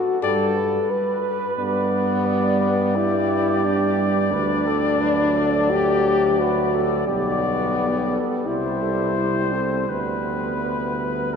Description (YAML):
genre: classical, brass quintet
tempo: 87 BPM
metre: 4/4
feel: uneven beats, rubato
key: G major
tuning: A4 = 440 Hz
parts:
  - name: mellow flugelhorn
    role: second line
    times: 0.0-11.4 s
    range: F#4 to D5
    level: -28 LUFS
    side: right 6 dB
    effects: none
  - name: warm French horn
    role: accompaniment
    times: 0.0-11.4 s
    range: B3 to B4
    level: -23 LUFS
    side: left 3 dB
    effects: none
  - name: clear trumpet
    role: melody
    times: 0.2-11.4 s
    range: B4 to D5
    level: -26 LUFS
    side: left 6 dB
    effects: none
  - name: warm trombone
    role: accompaniment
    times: 0.2-11.4 s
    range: F#3 to G3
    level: -31 LUFS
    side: right 4 dB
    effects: none
  - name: clear tuba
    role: bass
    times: 0.2-11.4 s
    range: B1 to G2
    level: -25 LUFS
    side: right 4 dB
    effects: none
room: wet cathedral reverb, RT60 5.4 s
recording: dark, warm production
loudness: -19 LUFS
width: side -6 dB against mid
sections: 0.0-11.4 A section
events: none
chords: 0.2 G; 4.3 D; 7.1 G/B; 8.5 C; 9.9 G/D